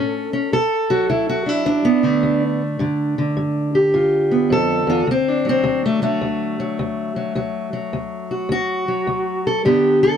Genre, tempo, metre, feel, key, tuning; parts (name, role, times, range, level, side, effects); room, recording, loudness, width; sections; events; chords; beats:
acoustic country blues, solo or duo; 105 BPM; 4/4; swing 66% on 8ths; D mixolydian; A4 = 440 Hz
fingerpicked steel-string acoustic guitar; solo; 0.0-10.2 s; D2 to A4; -17 LUFS; equal
light reverb; dry, close 1970s-style studio recording; -17 LUFS; side -8 dB against mid
0.5-10.2 A section
0.0 A; 0.5 D; 2.8 G7; 5.1 D; 9.7 G
| 0.52 1.09 1.66 2.23 | 2.80 3.37 3.94 4.51 | 5.09 5.66 6.23 6.80 | 7.37 7.94 8.51 9.08 | 9.65